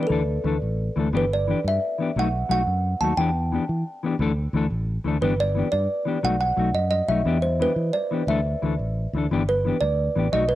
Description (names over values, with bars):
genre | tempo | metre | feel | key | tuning
highlife guitar band | 118 BPM (dotted quarters) | 12/8 | straight | G major | A4 = 440 Hz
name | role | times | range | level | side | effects
kalimba | melody | 0.0-10.6 s | A4 to A5 | -24 LUFS | right 2 dB | none
mellow electric guitar | accompaniment | 0.0-10.4 s | E3 to A4 | -26 LUFS | left 4 dB | cassette tape
fingered electric bass | bass | 0.1-10.6 s | G1 to E3 | -25 LUFS | equal | none
room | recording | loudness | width
light reverb, small room ambience | home recording on cassette | -21 LUFS | side -14 dB against mid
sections
0.0-9.3 A section; 9.3-10.6 B section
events
none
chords
0.1 Dsus2; 1.1 G6; 2.2 B7; 3.2 Em7; 4.2 Dsus2; 5.2 G6; 6.2 B7; 7.3 Em7; 8.3 Dsus2; 9.3 G6